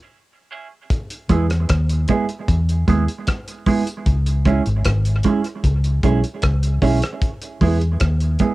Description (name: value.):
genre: dub reggae.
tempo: 76 BPM.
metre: 4/4.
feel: straight.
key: unclear.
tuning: A4 = 440 Hz.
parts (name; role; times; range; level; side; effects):
mellow electric guitar; accompaniment; 0.5-8.5 s; G#3 to G#4; -21 LUFS; right 4 dB; phaser, high-pass filter, cassette tape, dub echo.
cloth-damped thuddy drum kit; drums; 0.9-8.5 s; hi-hat, kick drum, rim click; -22 LUFS; equal; cassette tape.
vintage muted fingered electric bass; bass; 1.3-8.4 s; G#1 to E2; -18 LUFS; equal; none.
room: light reverb.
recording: home recording on cassette.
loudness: -16 LUFS.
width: side -18 dB against mid.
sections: 0.9-8.5 A section.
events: none.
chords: 0.0 C#m; 0.9 E; 4.1 C#m; 7.2 E.